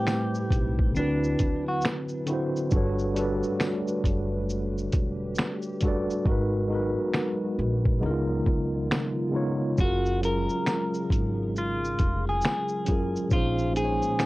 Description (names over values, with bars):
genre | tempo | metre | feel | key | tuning
lo-fi hip hop | 68 BPM | 4/4 | swing 62% on 16ths | unclear | A4 = 436 Hz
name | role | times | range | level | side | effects
electric guitar at the edge of break-up | melody | 0.0-1.8, 9.8-14.3 s | D4 to Bb4 | -30 LUFS | equal | phaser, low-pass filter
tine electric piano | accompaniment | 0.0-14.3 s | A2 to D5 | -28 LUFS | equal | fast stereo tremolo, cassette tape, low-pass filter
dark analog pad | sustained chords | 0.0-14.3 s | Db3 to B4 | -37 LUFS | left 1 dB | chorus, low-pass filter
lo-fi sampler-style drum kit | drums | 0.1-14.3 s | finger snaps, hi-hat, kick drum, shaker, snare drum | -26 LUFS | equal | none
tambourine | percussion | 0.1-14.3 s | none | -49 LUFS | left 2 dB | none
upright bass | bass | 0.5-14.0 s | Fb1 to D2 | -30 LUFS | equal | tube saturation
room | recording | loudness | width
light reverb | worn, warbling old tape, cassette tape, warbly pitch drift | -24 LUFS | side -19 dB against mid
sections
0.0-14.3 A section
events
hi-hats muted 6.3-9.8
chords
0.0 Am7; 1.0 D13; 2.7 Gmaj9#11; 6.3 Abm9; 8.0 Db13; 9.8 Gbmaj9; 13.3 Bbm11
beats
0.08 0.96 1.84 | 2.72 3.61 4.49 5.37 | 6.25 7.14 8.02 8.90 | 9.78 10.66 11.55 12.43 | 13.31 14.19